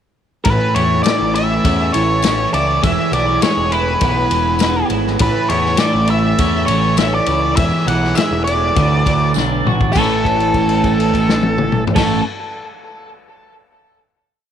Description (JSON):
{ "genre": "psychedelic rock", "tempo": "101 BPM", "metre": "4/4", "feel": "straight", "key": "A major", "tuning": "A4 = 439 Hz", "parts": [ { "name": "octave-fuzz lead guitar", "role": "melody", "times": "0.4-12.2 s", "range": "A4 to F#5", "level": "-18 LUFS", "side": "equal", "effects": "distortion, tape echo" }, { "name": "combo organ", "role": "sustained chords", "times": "0.4-12.2 s", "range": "C#3 to A4", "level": "-27 LUFS", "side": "right 14 dB", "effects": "lush chorus" }, { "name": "hand-pumped harmonium", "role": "drone", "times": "0.4-12.2 s", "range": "A2 to E3", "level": "-27 LUFS", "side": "left 1 dB", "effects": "none" }, { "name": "vintage drum kit", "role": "drums", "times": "0.4-12.1 s", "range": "crash cymbal, kick drum, ride cymbal, snare drum, toms", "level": "-20 LUFS", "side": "left 3 dB", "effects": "none" }, { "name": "twelve-string electric guitar", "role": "riff", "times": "0.5-12.2 s", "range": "A2 to F#4", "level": "-18 LUFS", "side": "right 1 dB", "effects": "phaser, double-tracked left and right" }, { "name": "growling picked electric bass", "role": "bass", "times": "0.5-12.2 s", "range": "E1 to E2", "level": "-21 LUFS", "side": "equal", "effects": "overdrive" }, { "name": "tambourine", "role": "percussion", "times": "1.0-10.2 s", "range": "none", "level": "-32 LUFS", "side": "left 18 dB", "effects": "none" } ], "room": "light reverb, studio reverb", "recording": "1960s-style stereo with parts hard left and right", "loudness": "-13 LUFS", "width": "side -9 dB against mid", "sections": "0.4-9.9 groove; 9.9-12.3 final chord", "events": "drum fill 9.4-9.9; held note 9.9-12.0", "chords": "0.4 A; 2.8 E; 5.2 A; 7.6 E; 8.8 D; 9.9 A" }